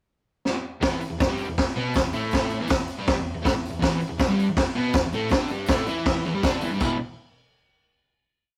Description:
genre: garage rock duo or trio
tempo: 160 BPM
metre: 4/4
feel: straight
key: unclear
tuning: A4 = 440 Hz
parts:
  - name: vintage drum kit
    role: drums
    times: 0.5-6.9 s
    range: hi-hat, kick drum, snare drum, splash cymbal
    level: -26 LUFS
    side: equal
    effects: none
  - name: overdriven semi-hollow guitar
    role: riff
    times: 0.8-7.0 s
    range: E2 to E4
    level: -29 LUFS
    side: equal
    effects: none
  - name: tambourine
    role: percussion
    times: 0.8-7.0 s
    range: none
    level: -50 LUFS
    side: equal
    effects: none
room: light reverb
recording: rough rehearsal-room recording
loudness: -25 LUFS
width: mono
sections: 0.0-0.8 pickup bar; 0.8-6.8 riff; 6.8-8.3 final chord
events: drum fill 0.4-0.8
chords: 0.0 N.C.; 0.8 E5

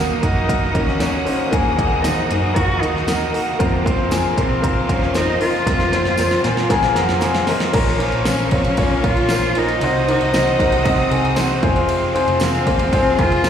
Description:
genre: piano-driven pop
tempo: 116 BPM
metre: 4/4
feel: straight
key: Bb minor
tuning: A4 = 441 Hz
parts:
  - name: warm upright piano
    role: accompaniment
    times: 0.0-13.5 s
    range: Bb2 to Bb5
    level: -19 LUFS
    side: left 2 dB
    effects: slapback echo
  - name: bright studio string section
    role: sustained chords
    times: 0.0-13.5 s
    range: Ab4 to Eb6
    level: -28 LUFS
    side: equal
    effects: none
  - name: cranked stack guitar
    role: riff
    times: 0.0-13.5 s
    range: F2 to Gb4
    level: -27 LUFS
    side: right 6 dB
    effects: overdrive, slapback echo
  - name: vintage muted picked electric bass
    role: bass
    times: 0.0-13.5 s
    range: F1 to Bb2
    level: -24 LUFS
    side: right 1 dB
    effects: none
  - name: warm cello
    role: melody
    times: 0.2-13.5 s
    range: Bb3 to Gb4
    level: -22 LUFS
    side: equal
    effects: slapback echo
  - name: deep house drum kit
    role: drums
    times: 0.2-13.5 s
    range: crash cymbal, hi-hat, kick drum, ride cymbal, snare drum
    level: -22 LUFS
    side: right 1 dB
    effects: none
  - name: tambourine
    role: percussion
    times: 1.0-13.5 s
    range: none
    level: -35 LUFS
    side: equal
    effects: none
room: light reverb, studio ambience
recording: live gig heard through the venue's PA, recital hall reverb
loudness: -15 LUFS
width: side -8 dB against mid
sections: 0.0-7.7 A section; 7.7-13.5 B section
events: drum fill 5.7-7.7; upright piano fill 6.2-7.7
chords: 0.0 Ebm; 3.6 Fsus4; 7.7 Bbm; 9.8 Cdim; 11.6 Fm

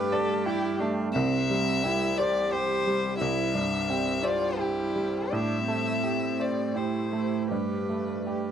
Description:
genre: neoclassical piano and strings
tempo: 85 BPM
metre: 3/4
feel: uneven beats, rubato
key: C major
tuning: A4 = 442 Hz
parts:
  - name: rich violin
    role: melody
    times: 0.0-8.5 s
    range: G4 to E5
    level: -30 LUFS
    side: left 6 dB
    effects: none
  - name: clear cello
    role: second line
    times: 0.0-8.5 s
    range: C4 to G4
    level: -31 LUFS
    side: right 4 dB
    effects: none
  - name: bright upright piano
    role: accompaniment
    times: 0.0-8.5 s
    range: C2 to D5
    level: -30 LUFS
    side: right 1 dB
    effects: none
  - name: warbly tape-like pad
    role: sustained chords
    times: 0.0-8.5 s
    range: G3 to D5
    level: -34 LUFS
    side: right 2 dB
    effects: chorus, built-in reverb
room: little or no reverb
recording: dry, close 1970s-style studio recording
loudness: -25 LUFS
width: side -9 dB against mid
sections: 0.0-8.5 A section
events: none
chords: 0.0 Gsus2; 1.2 C; 5.3 Am7; 7.5 Gadd9

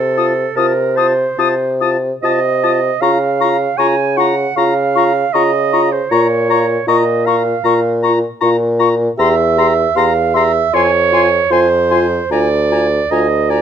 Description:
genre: classical, slow romantic movement for wind quintet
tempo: 77 BPM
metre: 4/4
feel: rubato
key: Bb minor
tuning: A4 = 439 Hz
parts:
  - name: clear clarinet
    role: accompaniment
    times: 0.0-13.6 s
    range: A4 to Ab5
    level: -16 LUFS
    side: right 6 dB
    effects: none
  - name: mellow bassoon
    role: bass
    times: 0.0-13.6 s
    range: D2 to Db3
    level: -16 LUFS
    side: equal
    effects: none
  - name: concert flute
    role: melody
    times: 0.2-13.6 s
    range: Bb5 to Eb6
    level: -19 LUFS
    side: left 11 dB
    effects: none
  - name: clear oboe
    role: second line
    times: 0.2-13.6 s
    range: Ab5 to Bb5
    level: -22 LUFS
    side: left 5 dB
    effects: none
  - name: mellow French horn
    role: accompaniment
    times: 0.2-13.6 s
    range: F4 to G4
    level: -20 LUFS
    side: left 1 dB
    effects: none
room: light reverb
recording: dark, warm production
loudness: -11 LUFS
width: side -8 dB against mid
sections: 0.0-13.6 A section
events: none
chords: 0.0 F7/C; 3.0 Bbm/Db; 6.1 Bbm; 9.2 C7/E; 10.7 Fm; 12.3 Bb7/D

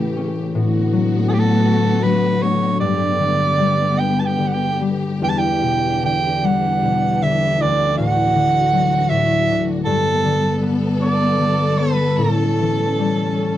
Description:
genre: celtic folk, Celtic slow air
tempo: 72-82 BPM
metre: 3/4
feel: rubato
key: unclear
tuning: A4 = 440 Hz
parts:
  - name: concert harp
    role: accompaniment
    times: 0.0-13.6 s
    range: D2 to F#4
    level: -19 LUFS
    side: left 3 dB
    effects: none
  - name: warm studio string section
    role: sustained chords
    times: 0.0-13.6 s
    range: A2 to A4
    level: -23 LUFS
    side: right 1 dB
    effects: none
  - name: clear soprano saxophone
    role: melody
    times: 1.3-13.6 s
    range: G4 to A5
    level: -19 LUFS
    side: right 3 dB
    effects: none
room: light reverb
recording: dry, close 1970s-style studio recording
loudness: -15 LUFS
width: side -12 dB against mid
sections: 0.0-13.6 A section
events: harp fill 13.4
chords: 0.0 A7; 0.6 D6/A; 2.8 G; 5.2 Em7; 7.6 Dadd9; 9.9 Gadd9; 12.2 A7

